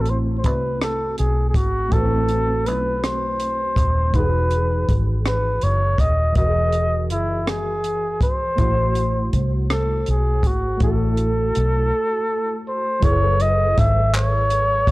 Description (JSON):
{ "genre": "slow six-eight R&B", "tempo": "54 BPM (dotted quarters)", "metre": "6/8", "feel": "straight", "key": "unclear", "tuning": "A4 = 445 Hz", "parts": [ { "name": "trumpet with bucket mute", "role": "melody", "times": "0.0-14.9 s", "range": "E4 to E5", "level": "-22 LUFS", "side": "equal", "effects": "none" }, { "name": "tine electric piano", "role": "accompaniment", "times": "0.0-14.9 s", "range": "E3 to D#5", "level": "-28 LUFS", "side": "equal", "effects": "ensemble chorus" }, { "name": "vintage muted fingered electric bass", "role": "bass", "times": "0.0-14.9 s", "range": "D#1 to C2", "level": "-21 LUFS", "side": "equal", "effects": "tube saturation" }, { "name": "compact cocktail drum kit", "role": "drums", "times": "0.1-14.9 s", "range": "handclaps, hi-hat, kick drum, rim click", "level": "-22 LUFS", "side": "equal", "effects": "none" } ], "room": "studio ambience", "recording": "dry, gritty hardware recording, cassette tape", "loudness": "-17 LUFS", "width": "side -19 dB against mid", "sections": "0.0-13.0 A section; 13.0-14.9 B section", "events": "break 11.9-13.0", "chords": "0.0 Am6; 4.1 Emaj9; 8.6 Am6; 13.0 F#m11", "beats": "0.80 | 1.91 3.02 | 4.14 5.25 | 6.36 7.47 | 8.58 9.69 | 10.80 11.91 | 13.03 14.14" }